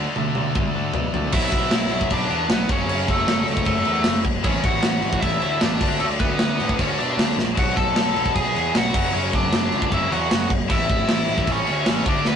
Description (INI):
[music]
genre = punk rock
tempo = 154 BPM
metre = 4/4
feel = straight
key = A major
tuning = A4 = 440 Hz
[part]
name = tight distorted guitar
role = riff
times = 0.0-12.4 s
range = F#2 to D4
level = -27 LUFS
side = equal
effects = distortion
[part]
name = fuzz picked electric bass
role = bass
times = 0.0-12.4 s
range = F#1 to B2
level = -27 LUFS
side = equal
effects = overdrive
[part]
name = tight metal drum kit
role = drums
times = 0.2-12.3 s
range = crash cymbal, kick drum, snare drum, toms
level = -22 LUFS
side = equal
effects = none
[part]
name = biting overdriven guitar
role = melody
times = 1.3-12.4 s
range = A3 to A5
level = -24 LUFS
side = equal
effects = none
[sound]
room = light reverb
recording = rough rehearsal-room recording, warm saturation, nothing above 10.7 kHz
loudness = -18 LUFS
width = side -8 dB against mid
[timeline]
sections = 0.0-1.3 A section; 1.3-12.4 B section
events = drum fill 0.0-1.3, 7.4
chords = 0.0 D5; 1.3 Bm; 2.7 F#m; 4.4 A; 5.8 D5; 7.6 B5; 8.9 F#5; 10.7 A